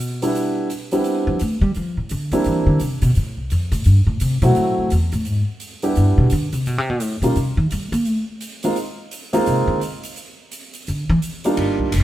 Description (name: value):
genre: jazz, small-group swing and bop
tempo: 171 BPM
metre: 4/4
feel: swing 63% on 8ths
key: C major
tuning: A4 = 440 Hz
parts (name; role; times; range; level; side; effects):
- upright bass; bass; 0.0-12.0 s; F1 to Bb3; -18 LUFS; equal; none
- swinging big-band drum kit; drums; 0.0-12.0 s; hi-hat, kick drum, ride cymbal; -34 LUFS; right 2 dB; none
- warm grand piano; accompaniment; 0.2-11.9 s; F#3 to G4; -20 LUFS; right 1 dB; none
room: moderate stone room reverb, RT60 1.4 s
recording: band playing live in one room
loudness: -17 LUFS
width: side -14 dB against mid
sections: 0.3-11.6 A section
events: upright bass solo 0.0-11.6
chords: 0.3 Cmaj7; 1.7 Gm7; 2.5 C9; 3.2 F; 4.6 F#m7b5; 5.3 Abmmaj7; 6.0 Em7; 7.4 Eb; 8.8 Ab69; 10.2 G5